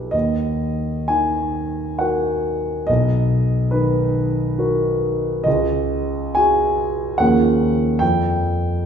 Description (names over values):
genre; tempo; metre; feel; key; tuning
classical, impressionist solo piano; 59-74 BPM; 3/4; rubato; unclear; A4 = 439 Hz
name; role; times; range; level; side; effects
warm concert grand piano; solo; 0.0-8.9 s; B1 to G#5; -17 LUFS; equal; none
room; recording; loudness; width
wet recital hall reverb, RT60 1.4 s; heard from further back in the room; -17 LUFS; side -7 dB against mid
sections
0.0-8.9 A section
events
none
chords
0.1 D#m; 2.9 Bmaj7; 5.5 C#sus24; 7.2 D#m11; 8.0 Fsus2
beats
| 0.14 1.10 2.01 | 2.88 3.72 4.58 | 5.46 6.37 7.20 | 8.02